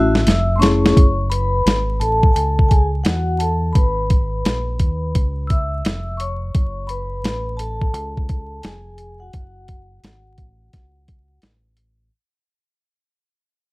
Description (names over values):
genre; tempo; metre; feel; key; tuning
hip hop, jazz-hop; 86 BPM; 4/4; swing 64% on 16ths; F# minor; A4 = 441 Hz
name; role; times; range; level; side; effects
vibraphone with soft mallets; accompaniment; 0.0-11.4 s; A3 to E6; -22 LUFS; left 1 dB; plate reverb
deep dub fingered electric bass; bass; 0.0-12.1 s; E#1 to E2; -22 LUFS; equal; none
boom bap sampler-style drum kit; drums; 0.2-12.0 s; hi-hat, kick drum, snare drum; -16 LUFS; equal; none
room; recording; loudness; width
light reverb; vinyl crackle; -16 LUFS; side -22 dB against mid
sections
1.0-12.1 A section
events
drum fill 0.0-1.0; fade-out 1.0-12.1; vibraphone solo 1.0-12.1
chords
0.0 F#m9; 3.8 G#m; 5.1 C#m; 6.5 F#madd9